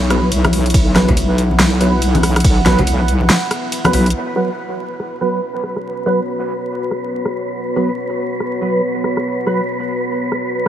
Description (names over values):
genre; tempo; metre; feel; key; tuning
deep dubstep; 141 BPM; 4/4; swing 61% on 16ths, half-time; unclear; A4 = 440 Hz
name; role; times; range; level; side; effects
deep dark ambient pad; sustained chords; 0.0-10.7 s; B3 to F#5; -23 LUFS; equal; chorus, built-in reverb
wobble bass; bass; 0.0-4.1 s; B1; -15 LUFS; equal; chorus
percussive organ stab; stabs; 0.1-10.7 s; F#3 to B4; -21 LUFS; right 2 dB; ensemble chorus, dub echo
deep house drum kit; drums; 0.1-10.7 s; hi-hat, ride cymbal, rim click, snare drum; -19 LUFS; equal; low-pass filter on hats, low-pass filter on snare, low-pass filter on cymbals
congas; percussion; 0.4-3.9 s; none; -22 LUFS; left 2 dB; dub echo
electronic kick drum; drums; 0.7-2.8 s; none; -15 LUFS; equal; none
wind-like tuned noise texture; texture; 4.8-10.7 s; B4; -24 LUFS; right 1 dB; built-in reverb
room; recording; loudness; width
light reverb, digital ambience; vinyl crackle; -14 LUFS; side -10 dB against mid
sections
0.0-4.1 A section; 4.1-10.7 B section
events
drop 0.0-4.1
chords
0.0 B5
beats
0.32 | 0.74 1.17 1.59 2.02 | 2.44 2.87 3.30 3.72 | 4.15 4.57 5.00 5.42 | 5.85 6.28 6.70 7.13 | 7.55 7.98 8.40 8.83 | 9.25 9.68 10.11 10.53